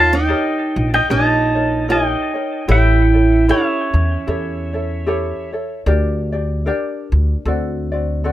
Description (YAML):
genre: Hawaiian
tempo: 75 BPM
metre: 4/4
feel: swing 58% on 8ths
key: unclear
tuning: A4 = 440 Hz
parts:
  - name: pedal steel guitar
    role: melody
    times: 0.0-5.5 s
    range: C#5 to A5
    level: -18 LUFS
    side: left 1 dB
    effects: ping-pong delay
  - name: picked old ladder-braced acoustic guitar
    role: second line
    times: 0.0-5.5 s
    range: C#4 to F4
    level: -20 LUFS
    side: right 4 dB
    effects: none
  - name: ukulele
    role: accompaniment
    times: 0.0-8.3 s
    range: C4 to D5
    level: -23 LUFS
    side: left 2 dB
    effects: none
  - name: upright bass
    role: bass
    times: 0.0-8.3 s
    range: A1 to E2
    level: -18 LUFS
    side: equal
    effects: none
room: light reverb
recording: rough home demo mix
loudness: -15 LUFS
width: side -13 dB against mid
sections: 0.0-8.3 A section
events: none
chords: 0.0 Eb7; 2.7 A7; 5.9 Gm/D; 7.5 D7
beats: 0.29 1.09 1.89 | 2.68 3.48 4.28 5.07 | 5.87 6.66 7.46 8.25